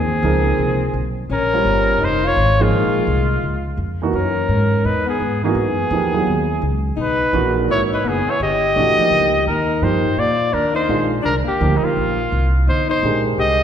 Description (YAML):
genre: jazz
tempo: 169 BPM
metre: 4/4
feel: swing 65% on 8ths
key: C minor from 9.8 s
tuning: A4 = 440 Hz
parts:
  - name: clear trumpet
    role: melody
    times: 0.0-13.6 s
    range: Eb4 to Eb5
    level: -20 LUFS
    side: equal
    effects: none
  - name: clear alto saxophone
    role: second line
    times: 0.0-13.6 s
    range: G3 to G4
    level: -23 LUFS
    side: left 6 dB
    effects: none
  - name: upright bass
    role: bass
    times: 0.0-13.6 s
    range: F1 to Bb2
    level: -21 LUFS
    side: equal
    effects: none
  - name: warm baby grand piano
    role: accompaniment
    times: 0.2-13.6 s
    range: Eb3 to C5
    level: -22 LUFS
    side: right 4 dB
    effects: none
room: wet scoring stage reverb, RT60 1.7 s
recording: recorded in a church or concert hall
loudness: -15 LUFS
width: side -8 dB against mid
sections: 0.0-9.8 A section; 9.8-13.6 B section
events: none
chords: 0.0 Eb13sus4; 4.1 Gb13sus4; 8.4 G7alt; 9.8 Cm11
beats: 0.23 0.59 0.94 | 1.30 1.65 2.01 2.36 | 2.72 3.07 3.43 3.78 | 4.14 4.49 4.85 5.20 | 5.56 5.91 6.27 6.62 | 6.98 7.33 7.69 8.04 | 8.40 8.76 9.11 9.47 | 9.82 10.18 10.54 10.89 | 11.25 11.60 11.96 12.32 | 12.67 13.03 13.39